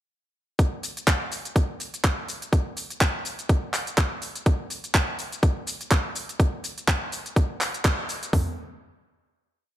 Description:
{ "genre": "house", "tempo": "124 BPM", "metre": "4/4", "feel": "swing 56% on 16ths", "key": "none", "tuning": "none", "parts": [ { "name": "garage drum kit", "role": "drums", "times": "0.6-8.5 s", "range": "hi-hat, kick drum, toms", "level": "-23 LUFS", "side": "equal", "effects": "none" }, { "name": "garage drum kit", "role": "drums", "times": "0.6-8.3 s", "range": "handclaps, hi-hat, shaker", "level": "-27 LUFS", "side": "equal", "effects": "none" } ], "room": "little or no reverb", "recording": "none", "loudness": "-23 LUFS", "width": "side -13 dB against mid", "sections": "0.6-8.3 drop; 8.3-9.8 final hit", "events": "drop 0.6-8.3; band accent 7.8", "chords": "none" }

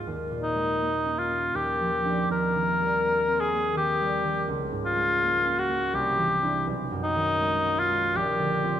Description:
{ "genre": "classical, impressionist duo for cor anglais and harp", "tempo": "82 BPM", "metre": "3/4", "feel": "rubato", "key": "F minor", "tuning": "A4 = 442 Hz", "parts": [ { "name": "warm cor anglais", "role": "melody", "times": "0.0-8.8 s", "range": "Eb4 to Bb4", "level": "-24 LUFS", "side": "left 1 dB", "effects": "none" }, { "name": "concert harp", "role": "accompaniment", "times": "0.0-8.8 s", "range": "A#1 to E#4", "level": "-28 LUFS", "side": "right 1 dB", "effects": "none" } ], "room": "moderate concert hall reverb, RT60 2.2 s", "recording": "none", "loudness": "-23 LUFS", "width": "side -10 dB against mid", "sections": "0.0-8.8 A section", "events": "none", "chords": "0.1 Eb7sus4; 1.6 Bb69/Eb; 2.3 F9sus4/Eb; 4.5 C#6; 5.9 Cadd9; 6.7 B6; 8.1 A#69" }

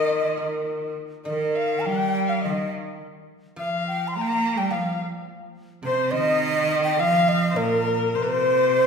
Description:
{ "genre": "chinese traditional, Chinese chamber ensemble", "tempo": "104 BPM", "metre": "4/4", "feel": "rubato", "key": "unclear", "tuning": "A4 = 435 Hz", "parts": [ { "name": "breathy xiao", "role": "melody", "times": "0.0-8.9 s", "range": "Bb4 to C6", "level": "-24 LUFS", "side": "left 1 dB", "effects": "none" }, { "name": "clear cello", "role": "second line", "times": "0.0-8.9 s", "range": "Bb2 to Bb3", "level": "-27 LUFS", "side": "right 3 dB", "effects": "none" }, { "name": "clear erhu", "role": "second line", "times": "0.0-8.9 s", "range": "Bb4 to Bb5", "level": "-29 LUFS", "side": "left 2 dB", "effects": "none" }, { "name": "guzheng", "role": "accompaniment", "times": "0.0-8.9 s", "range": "Bb2 to Bb4", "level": "-30 LUFS", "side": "equal", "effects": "none" } ], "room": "wet recital hall reverb, RT60 1.8 s", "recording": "recorded in a church or concert hall", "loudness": "-21 LUFS", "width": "side -6 dB against mid", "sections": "0.0-8.9 A section", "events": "none", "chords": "none" }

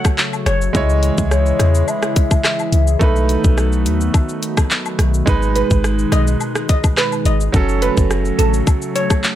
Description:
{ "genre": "dancehall", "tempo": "106 BPM", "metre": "4/4", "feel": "straight", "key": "G# phrygian", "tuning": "A4 = 440 Hz", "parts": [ { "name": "clear concert grand piano", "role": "accompaniment", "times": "0.0-9.4 s", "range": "F#3 to C#5", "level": "-22 LUFS", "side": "right 5 dB", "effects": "none" }, { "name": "hollow soft pad", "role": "sustained chords", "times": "0.0-9.4 s", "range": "B2 to A4", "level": "-24 LUFS", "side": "left 2 dB", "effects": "chorus, sidechain pumping" }, { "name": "island pop drum kit", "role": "drums", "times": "0.0-9.4 s", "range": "handclaps, hi-hat, kick drum, rim click, shaker", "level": "-17 LUFS", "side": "equal", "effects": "vintage 12-bit sampler grit" }, { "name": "woodblock and cabasa", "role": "percussion", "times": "0.0-9.2 s", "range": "none", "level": "-29 LUFS", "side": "left 8 dB", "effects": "none" }, { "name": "steel pan", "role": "melody", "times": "0.5-0.6, 5.6-9.1 s", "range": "A4 to D#5", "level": "-22 LUFS", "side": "right 2 dB", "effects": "none" }, { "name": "clean 808-style bass", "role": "bass", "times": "0.5-8.6 s", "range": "F#1 to E2", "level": "-16 LUFS", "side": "equal", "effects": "none" }, { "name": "hollow clarinet-like synth lead", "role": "second line", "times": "0.7-4.1 s", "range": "A4 to E5", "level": "-23 LUFS", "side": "left 4 dB", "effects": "chorus, ping-pong delay" } ], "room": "little or no reverb", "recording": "none", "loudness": "-14 LUFS", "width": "side -12 dB against mid", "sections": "0.0-9.4 A section", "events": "none", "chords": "0.0 F#m; 0.7 C#m; 3.0 B7; 5.3 G#m; 7.5 F#m" }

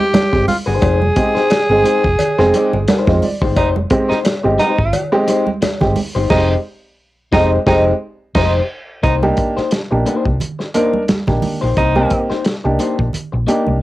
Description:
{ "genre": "funk", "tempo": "88 BPM", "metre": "4/4", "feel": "swing 56% on 16ths", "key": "C minor", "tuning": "A4 = 440 Hz", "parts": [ { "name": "raspy tenor saxophone", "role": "melody", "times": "0.0-3.2 s", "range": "F4 to Ab4", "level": "-16 LUFS", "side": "equal", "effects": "cassette tape" }, { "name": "electric guitar at the edge of break-up", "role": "accompaniment", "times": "0.0-13.7 s", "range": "Ab3 to D5", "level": "-21 LUFS", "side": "left 5 dB", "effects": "cassette tape" }, { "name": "hollow-body short-scale fingered electric bass", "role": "bass", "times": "0.1-13.8 s", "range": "F1 to F2", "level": "-18 LUFS", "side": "equal", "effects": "none" }, { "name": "warm soul drum kit", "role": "drums", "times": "0.1-13.7 s", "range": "crash cymbal, hi-hat, kick drum, snare drum", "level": "-19 LUFS", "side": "equal", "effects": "cassette tape" }, { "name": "congas", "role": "percussion", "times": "0.1-13.8 s", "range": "none", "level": "-23 LUFS", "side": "right 4 dB", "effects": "none" }, { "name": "cowbell", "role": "percussion", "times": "0.1-5.8 s", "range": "none", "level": "-24 LUFS", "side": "left 2 dB", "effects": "none" }, { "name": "dark upright piano", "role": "stabs", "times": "0.3-13.8 s", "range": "Ab3 to Eb5", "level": "-17 LUFS", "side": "right 1 dB", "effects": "cassette tape" }, { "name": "warm baritone saxophone", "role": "second line", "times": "3.6-12.2 s", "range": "Eb4", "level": "-18 LUFS", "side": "right 2 dB", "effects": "cassette tape" } ], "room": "light reverb", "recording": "home recording on cassette", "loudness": "-13 LUFS", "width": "side -16 dB against mid", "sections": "0.0-9.0 A section; 9.0-13.8 B section", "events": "upright piano fill 2.2-3.6; band accent 6.3-9.0", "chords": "0.0 Fm9; 9.0 Cm7" }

